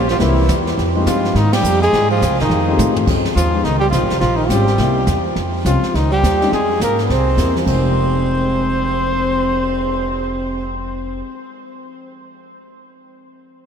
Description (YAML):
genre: jazz, small-group swing and bop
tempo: 209 BPM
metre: 4/4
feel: swing 61% on 8ths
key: F minor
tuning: A4 = 440 Hz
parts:
  - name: clear flugelhorn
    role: melody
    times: 0.0-10.7 s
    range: Eb4 to C5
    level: -20 LUFS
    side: left 1 dB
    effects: diffuse ambient delay
  - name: breathy tenor saxophone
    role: second line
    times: 0.0-10.7 s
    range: Eb3 to C4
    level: -21 LUFS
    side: right 3 dB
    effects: none
  - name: warm upright piano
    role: accompaniment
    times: 0.0-11.4 s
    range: F2 to Bb4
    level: -24 LUFS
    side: left 5 dB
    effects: none
  - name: upright bass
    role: bass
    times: 0.0-11.2 s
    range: F1 to A2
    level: -19 LUFS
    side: equal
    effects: none
  - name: jazz brush drum kit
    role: drums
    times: 0.1-9.9 s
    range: brushed snare drum, crash cymbal, cymbal swell, hi-hat, kick drum, ride cymbal, snare drum, toms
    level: -25 LUFS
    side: right 1 dB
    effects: none
room: wet huge ambient reverb, RT60 7.9 s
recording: dreamy mix soaked in reverb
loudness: -14 LUFS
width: side -7 dB against mid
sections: 0.0-3.1 A section; 3.1-7.7 B section; 7.7-10.0 C section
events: band accent 1.5; drum fill 2.5-3.1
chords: 0.2 C7b13; 0.8 Fm7; 2.5 F7; 3.1 Eb13; 3.6 Db7; 4.2 Bbm9; 4.8 C7; 5.4 Dbmaj7; 5.9 Db5; 6.5 Fmadd11; 7.1 C7; 7.7 Fm7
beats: 0.20 0.49 | 0.78 1.06 1.35 1.64 | 1.93 2.21 2.50 2.79 | 3.07 3.36 3.65 3.93 | 4.22 4.51 4.79 5.08 | 5.37 5.66 5.94 6.23 | 6.51 6.80 7.09 7.38 | 7.66 7.95 8.23 8.52 | 8.81 9.09 9.38 9.67